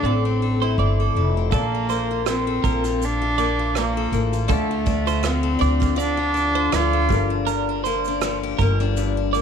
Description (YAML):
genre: acoustic pop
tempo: 81 BPM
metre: 4/4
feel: swing 55% on 16ths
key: unclear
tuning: A4 = 435 Hz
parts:
  - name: clear cello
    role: melody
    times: 0.0-7.3 s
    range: A3 to F4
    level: -24 LUFS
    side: right 1 dB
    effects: none
  - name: picked steel-string acoustic guitar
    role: accompaniment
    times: 0.0-9.4 s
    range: G2 to A4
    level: -26 LUFS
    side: left 11 dB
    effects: none
  - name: twelve-string electric guitar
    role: arpeggios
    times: 0.0-9.4 s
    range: A4 to D5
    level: -27 LUFS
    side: right 13 dB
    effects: none
  - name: upright bass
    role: bass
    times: 0.0-9.4 s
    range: F1 to D2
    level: -23 LUFS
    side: equal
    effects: none
  - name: bright grand piano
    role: accompaniment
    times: 1.5-9.4 s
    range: G3 to D5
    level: -35 LUFS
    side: left 12 dB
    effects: none
  - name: soft brush drum kit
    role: drums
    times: 1.5-9.4 s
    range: kick drum, rim click, shaker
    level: -27 LUFS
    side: right 4 dB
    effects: none
room: light reverb, studio reverb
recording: 1960s-style stereo with parts hard left and right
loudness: -19 LUFS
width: side -7 dB against mid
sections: 0.0-1.5 A section; 1.5-9.4 B section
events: none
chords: 0.0 Am; 1.5 Bbmaj7; 4.5 Dm; 7.1 Gm7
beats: 0.04 0.78 | 1.52 2.27 3.01 3.75 | 4.50 5.24 5.98 6.73 | 7.47 8.21 8.96